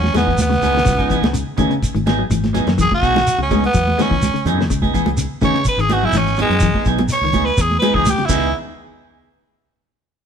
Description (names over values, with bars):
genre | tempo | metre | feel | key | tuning
afrobeat | 125 BPM | 4/4 | straight | C# minor | A4 = 440 Hz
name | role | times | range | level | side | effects
raspy tenor saxophone | melody | 0.0-8.5 s | G#3 to C#5 | -18 LUFS | right 2 dB | none
clean electric guitar | arpeggios | 0.0-8.4 s | B2 to G#3 | -23 LUFS | left 8 dB | none
fingered electric bass | bass | 0.0-8.5 s | G#1 to C#3 | -22 LUFS | equal | none
congas | percussion | 0.0-8.4 s | none | -23 LUFS | right 3 dB | none
clean electric guitar | stabs | 0.1-8.5 s | E3 to G#4 | -23 LUFS | right 3 dB | spring reverb
cloth-damped thuddy drum kit | drums | 0.1-8.4 s | crash cymbal, hi-hat, kick drum, snare drum | -23 LUFS | left 1 dB | none
shekere | percussion | 0.1-8.4 s | none | -24 LUFS | right 1 dB | none
room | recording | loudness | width
light reverb | band playing live in one room | -14 LUFS | side -7 dB against mid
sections
0.0-8.5 A section; 8.5-10.3 B section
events
tenor saxophone solo 0.0-8.5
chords
0.0 C#m9; 8.5 N.C.